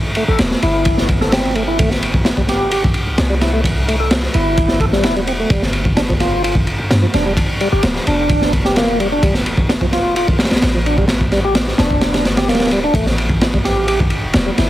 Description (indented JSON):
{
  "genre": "breakbeat, breaks",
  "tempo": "129 BPM",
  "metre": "4/4",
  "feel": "straight",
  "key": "A phrygian",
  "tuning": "A4 = 440 Hz",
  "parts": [
    { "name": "crunchy breakbeat drum kit", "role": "drums", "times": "0.1-14.7 s", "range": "kick drum, ride cymbal, snare drum", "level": "-15 LUFS", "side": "equal", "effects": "none" },
    { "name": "tonewheel organ", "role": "riff", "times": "0.2-14.7 s", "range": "F3 to A4", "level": "-19 LUFS", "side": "equal", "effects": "overdrive, chorus vibrato, slow rotary speaker, tube saturation, tape echo" },
    { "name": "warm 808-style bass", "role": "bass", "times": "0.3-14.7 s", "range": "D1 to G2", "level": "-21 LUFS", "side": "equal", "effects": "none" }
  ],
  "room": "light reverb, studio ambience",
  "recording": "heavily compressed radio sound",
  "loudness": "-13 LUFS",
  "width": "side -14 dB against mid",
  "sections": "0.0-14.7 A section",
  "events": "none",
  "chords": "0.0 Am7; 5.5 Gm7; 13.0 A7(no3)",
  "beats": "0.39 0.86 1.32 | 1.79 2.25 2.72 3.18 | 3.65 4.12 4.58 5.04 | 5.51 5.97 6.44 6.91 | 7.37 7.84 8.30 8.77 | 9.23 9.70 10.16 10.63 | 11.09 11.56 12.02 12.49 | 12.95 13.42 13.88 14.35"
}